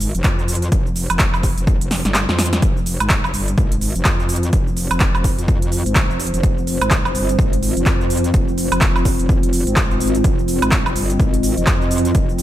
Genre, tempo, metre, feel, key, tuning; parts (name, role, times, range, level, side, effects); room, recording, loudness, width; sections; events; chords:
bass house; 126 BPM; 4/4; swing 60% on 16ths; F minor; A4 = 438 Hz
metallic wobble bass; bass; 0.0-12.4 s; F1 to F2; -21 LUFS; equal; chorus, sidechain pumping
big-room dance drum kit; drums; 0.0-12.4 s; cabasa, handclaps, hi-hat, snare drum, woodblock; -21 LUFS; right 1 dB; overdrive
electronic kick drum; drums; 0.2-12.3 s; -18 LUFS; equal; overdrive
dark analog pad; sustained chords; 3.5-12.4 s; C4 to Eb5; -23 LUFS; equal; chorus, phaser, sidechain pumping
digital ambience; -15 LUFS; side -13 dB against mid
0.0-12.4 A section
drum fill 1.9-2.6; kick drops out 2.1-2.6
0.0 F5